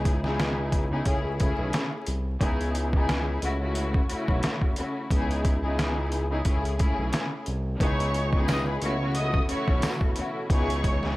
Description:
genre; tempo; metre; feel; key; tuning
hip hop, boom-bap hip-hop; 89 BPM; 4/4; swing 54% on 16ths; C# minor; A4 = 440 Hz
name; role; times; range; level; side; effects
dark studio string section; accompaniment; 0.0-11.2 s; C#3 to G#4; -30 LUFS; left 2 dB; cassette tape, high-pass filter, low-pass filter
smooth synth bass; bass; 0.0-11.2 s; B1 to C#2; -28 LUFS; equal; none
trip hop sampler-style drum kit; drums; 0.1-11.1 s; hi-hat, kick drum, snare drum; -26 LUFS; equal; none
warm studio violin section; melody; 7.8-11.1 s; B4 to D#6; -31 LUFS; right 1 dB; high-pass filter, low-pass filter
warm analog pad; sustained chords; 7.8-11.2 s; B2 to D#5; -39 LUFS; right 1 dB; none
tambourine; percussion; 8.5-10.0 s; none; -46 LUFS; right 3 dB; none
room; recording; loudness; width
studio reverb; vinyl crackle; -24 LUFS; side -18 dB against mid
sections
0.0-7.8 A section; 7.8-11.2 B section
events
none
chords
0.0 C#m9; 1.1 B13sus4; 2.4 C#m9; 3.4 B9sus4/C#; 5.1 C#m9; 6.5 B13sus4; 7.8 C#m9; 8.8 B9sus4/C#; 10.5 C#m9

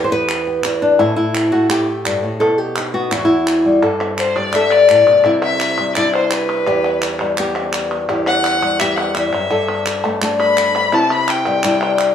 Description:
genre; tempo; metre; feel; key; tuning
flamenco; 169 BPM; 4/4; straight; E minor; A4 = 440 Hz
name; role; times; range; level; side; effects
flamenco guitar; melody; 0.0-12.1 s; E2 to C5; -15 LUFS; left 2 dB; plate reverb
palmas hand claps; percussion; 0.3-12.1 s; none; -22 LUFS; right 1 dB; none
rich violin; second line; 4.2-12.1 s; B4 to B5; -18 LUFS; left 2 dB; none
room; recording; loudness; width
wet stone room reverb, RT60 1.0 s; none; -13 LUFS; side -8 dB against mid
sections
0.0-3.8 A section; 3.8-12.1 B section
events
violin solo 3.8-12.1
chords
0.0 Em; 1.0 A5; 2.4 B; 3.1 Em; 3.8 Gsus2; 5.2 Cadd9; 6.7 Em; 9.5 Gsus2; 10.9 Cadd9

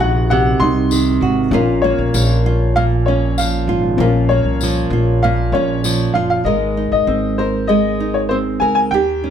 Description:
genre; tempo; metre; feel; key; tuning
acoustic pop; 97 BPM; 4/4; straight; unclear; A4 = 440 Hz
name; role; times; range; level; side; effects
bright upright piano; melody; 0.0-9.3 s; C5 to C6; -19 LUFS; left 3 dB; none
dark upright piano; accompaniment; 0.0-6.5 s; C4 to Gb5; -24 LUFS; left 5 dB; none
nylon-string guitar; accompaniment; 0.0-9.3 s; Bb2 to Bb4; -17 LUFS; right 4 dB; none
upright bass; bass; 0.0-9.3 s; Gb1 to Eb2; -19 LUFS; left 1 dB; none
tambourine; percussion; 0.9-6.0 s; none; -24 LUFS; left 5 dB; none
room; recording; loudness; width
light reverb; dark, warm production; -13 LUFS; side -8 dB against mid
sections
0.0-6.5 A section; 6.5-9.3 B section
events
none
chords
0.0 Cdim; 1.5 Bbm; 6.5 Abadd9

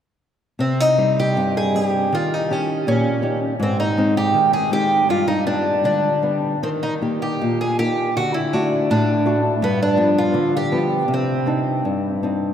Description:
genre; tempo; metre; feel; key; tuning
fado-style ballad; 80 BPM; 2/4; uneven beats, rubato; C minor; A4 = 441 Hz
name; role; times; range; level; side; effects
picked twelve-string acoustic guitar; melody; 0.6-11.8 s; B3 to Ab4; -20 LUFS; equal; none
nylon-string guitar; accompaniment; 0.6-12.5 s; G2 to G4; -20 LUFS; left 1 dB; none
room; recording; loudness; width
wet cathedral reverb, RT60 5.0 s; in a vast, echoing space; -17 LUFS; side -9 dB against mid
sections
0.6-12.5 A section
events
none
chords
0.6 Cm; 2.1 Eb7; 3.6 Ab; 5.1 G; 6.6 Eb; 8.2 D; 9.6 G7; 11.1 Cmadd9

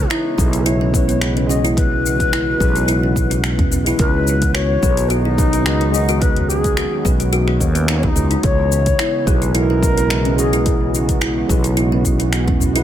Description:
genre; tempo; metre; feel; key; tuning
organic downtempo; 108 BPM; 4/4; swing 54% on 16ths; C# minor; A4 = 438 Hz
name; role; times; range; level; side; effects
low Native American-style wooden flute; melody; 0.0-10.9 s; D#4 to C#5; -22 LUFS; left 2 dB; dub echo
warm analog pad; sustained chords; 0.0-12.8 s; C#3 to F#4; -25 LUFS; right 2 dB; wide subtle chorus, sidechain pumping
fretless electric bass; bass; 0.0-12.8 s; B1 to D#2; -19 LUFS; equal; sidechain pumping
kalimba; arpeggios; 0.1-12.8 s; B3 to G#4; -23 LUFS; right 2 dB; dub echo
afro-pop drum kit; drums; 0.1-12.8 s; finger snaps, hi-hat, shaker; -24 LUFS; left 2 dB; small room ambience
tine electric piano; accompaniment; 0.4-12.8 s; G#3 to D#5; -26 LUFS; left 2 dB; medium stereo tremolo, sidechain pumping, analog delay
electronic kick drum; drums; 0.4-12.6 s; none; -19 LUFS; equal; small room ambience
udu; percussion; 3.6-8.3, 12.5-12.7 s; none; -24 LUFS; left 1 dB; none
room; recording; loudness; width
digital ambience; echo-heavy mix; -14 LUFS; side -11 dB against mid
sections
0.0-12.8 A section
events
none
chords
0.0 C#m7; 4.0 G#m7; 8.4 C#m7

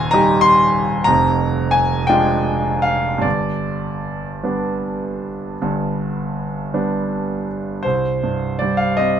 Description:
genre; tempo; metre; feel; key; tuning
classical, romantic nocturne for solo piano; 50-65 BPM (dotted quarters); 12/8; rubato; C minor; A4 = 440 Hz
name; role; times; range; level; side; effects
clear concert grand piano; solo; 0.0-9.2 s; Eb1 to C6; -16 LUFS; equal; none
room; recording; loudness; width
light reverb; close, detailed microphones, faint mains hum; -16 LUFS; side -9 dB against mid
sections
0.0-7.8 A section; 7.8-9.2 B section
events
none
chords
0.0 Cm/Eb; 1.1 Ddim/F; 3.2 G; 7.8 Cm

